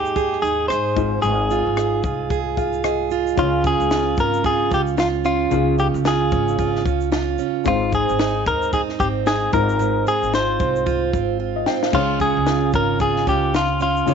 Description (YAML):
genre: acoustic pop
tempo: 112 BPM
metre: 4/4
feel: swing 60% on 16ths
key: unclear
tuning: A4 = 441 Hz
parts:
  - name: direct-recorded clean electric guitar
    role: melody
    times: 0.0-14.1 s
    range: F4 to C5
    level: -21 LUFS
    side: left 2 dB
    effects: none
  - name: felt-muted upright piano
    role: accompaniment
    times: 0.0-14.1 s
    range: Ab3 to G5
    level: -27 LUFS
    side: left 17 dB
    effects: none
  - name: picked plugged-in steel-string acoustic guitar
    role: accompaniment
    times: 0.0-14.1 s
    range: Ab2 to Ab4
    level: -22 LUFS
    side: right 12 dB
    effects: none
  - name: upright bass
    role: bass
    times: 0.0-14.1 s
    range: Ab1 to Ab2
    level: -26 LUFS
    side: left 2 dB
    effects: none
  - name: compact cocktail drum kit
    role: drums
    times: 0.1-14.1 s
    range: crash cymbal, kick drum, rim click, shaker, snare drum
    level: -26 LUFS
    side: left 3 dB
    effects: none
room: small room ambience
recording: 1960s-style stereo with parts hard left and right, nothing above 7.7 kHz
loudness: -17 LUFS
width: side -6 dB against mid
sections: 0.0-3.4 A section; 3.4-14.1 B section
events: felt piano fill 2.3-3.4; drum fill 11.4-11.9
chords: 0.0 Ab; 1.0 Fm7/Ab; 3.4 Db; 7.7 Ab; 9.5 Fm7/Ab; 11.9 Db